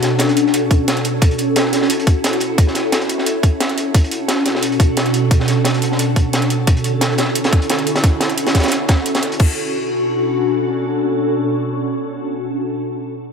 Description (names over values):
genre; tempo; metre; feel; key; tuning
liquid drum and bass; 176 BPM; 4/4; straight; B minor; A4 = 440 Hz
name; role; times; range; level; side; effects
glassy FM pad; sustained chords; 0.0-12.5 s; B2 to A4; -17 LUFS; equal; ensemble chorus, built-in reverb, phaser, sidechain pumping
crunchy breakbeat drum kit; drums; 0.0-9.4 s; hi-hat, snare drum; -21 LUFS; equal; high-pass filter on hats, high-pass filter on snare, high-pass filter on room
drum and bass drum kit; drums; 0.0-9.5 s; crash cymbal, hi-hat; -26 LUFS; right 3 dB; overdrive
electronic kick drum; drums; 0.7-9.5 s; none; -13 LUFS; equal; overdrive
room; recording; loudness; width
moderate lush hall reverb, RT60 1.9 s, digital ambience; dreamy mix soaked in reverb; -14 LUFS; side -6 dB against mid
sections
0.0-9.4 A section; 9.4-12.1 B section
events
none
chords
0.0 Bm9; 1.2 F#m7; 3.9 Bm9; 6.7 Dmaj9; 8.0 F#m7; 9.4 Bm9